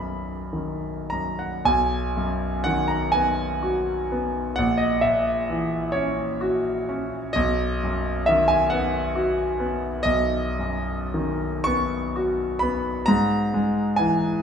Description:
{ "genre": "classical, romantic nocturne for solo piano", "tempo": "33-47 BPM (dotted quarters)", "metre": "12/8", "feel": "rubato", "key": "B major", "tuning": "A4 = 440 Hz", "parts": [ { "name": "clear grand piano", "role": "solo", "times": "0.0-14.4 s", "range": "A#1 to C#6", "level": "-21 LUFS", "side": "equal", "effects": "none" } ], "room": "moderate scoring stage reverb, RT60 1.8 s", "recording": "none", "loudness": "-21 LUFS", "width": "side -7 dB against mid", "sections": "0.0-1.7 A section; 1.7-14.4 A section", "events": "none", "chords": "0.0 B; 4.6 F#7/A#; 7.4 B; 13.1 E/G#" }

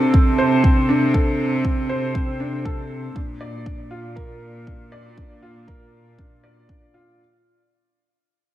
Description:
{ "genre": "piano and strings electronica", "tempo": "119 BPM", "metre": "4/4", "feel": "straight", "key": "unclear", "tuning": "A4 = 440 Hz", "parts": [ { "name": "dark upright piano", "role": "riff", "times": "0.0-7.2 s", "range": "C4 to D5", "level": "-23 LUFS", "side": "equal", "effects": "lush chorus, diffuse ambient delay" }, { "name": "warm studio cello section", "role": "bass", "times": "0.0-7.2 s", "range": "Bb2 to C3", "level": "-24 LUFS", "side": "right 1 dB", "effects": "sidechain pumping" }, { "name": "shaker", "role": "drums", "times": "0.0-7.2 s", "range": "none", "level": "-61 LUFS", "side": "equal", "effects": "none" }, { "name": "electronic kick drum", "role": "drums", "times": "0.1-6.8 s", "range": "none", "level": "-19 LUFS", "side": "equal", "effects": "small room ambience" } ], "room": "light reverb, small room ambience", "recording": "none", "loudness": "-17 LUFS", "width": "side -13 dB against mid", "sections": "0.0-7.2 A section", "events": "fade-out 0.0-7.2; filter sweep on cello section 0.0-7.2", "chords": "0.0 Csus2; 3.2 Bb" }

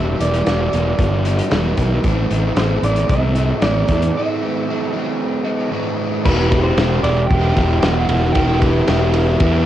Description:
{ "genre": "rock, shoegaze and dream pop", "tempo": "114 BPM", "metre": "4/4", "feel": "straight", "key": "E minor", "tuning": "A4 = 436 Hz", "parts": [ { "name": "electric guitar through a small old amp", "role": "melody", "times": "0.0-9.7 s", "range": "B4 to G5", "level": "-23 LUFS", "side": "right 3 dB", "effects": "cassette tape, tape echo" }, { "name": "crunchy overdriven guitar", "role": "riff", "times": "0.0-9.7 s", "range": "A2 to G4", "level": "-19 LUFS", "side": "equal", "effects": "wide subtle chorus" }, { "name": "fuzz fingered electric bass", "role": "bass", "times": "0.0-9.6 s", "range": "E1 to E2", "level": "-18 LUFS", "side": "equal", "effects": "overdrive" }, { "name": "loose indie drum kit", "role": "drums", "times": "0.2-9.5 s", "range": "crash cymbal, hi-hat, kick drum, ride cymbal, snare drum", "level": "-20 LUFS", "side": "equal", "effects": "cassette tape" } ], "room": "little or no reverb", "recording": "home recording on cassette", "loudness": "-15 LUFS", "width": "side -12 dB against mid", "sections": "0.0-6.3 A section; 6.3-9.7 B section", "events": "break 4.1-6.3", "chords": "0.0 Em7; 2.0 Am; 6.3 Em" }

